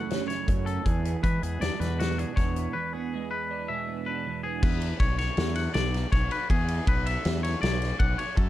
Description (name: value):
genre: math rock and midwest emo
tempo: 160 BPM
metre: 5/4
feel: straight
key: unclear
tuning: A4 = 441 Hz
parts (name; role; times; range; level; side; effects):
- twelve-string electric guitar; accompaniment; 0.0-6.5 s; E2 to E4; -34 LUFS; right 9 dB; analog chorus, plate reverb
- twangy electric guitar; arpeggios; 0.0-8.5 s; F#4 to F#5; -32 LUFS; left 4 dB; spring reverb
- loose indie drum kit; drums; 0.1-8.5 s; crash cymbal, hi-hat, kick drum, ride cymbal, snare drum; -27 LUFS; equal; none
- fuzz fingered electric bass; bass; 0.5-8.5 s; B1 to E3; -29 LUFS; equal; overdrive
room: little or no reverb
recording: dark, warm production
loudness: -25 LUFS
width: side -14 dB against mid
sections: 0.0-4.6 A section; 4.6-8.5 B section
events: break 2.7-4.6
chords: 0.0 F#m7; 0.9 E7; 4.6 E7(no3)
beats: 0.10 0.48 | 0.86 1.24 1.62 1.99 2.37 | 2.75 3.12 3.50 3.88 4.25 | 4.63 5.00 5.38 5.75 6.13 | 6.50 6.88 7.25 7.62 8.00 | 8.37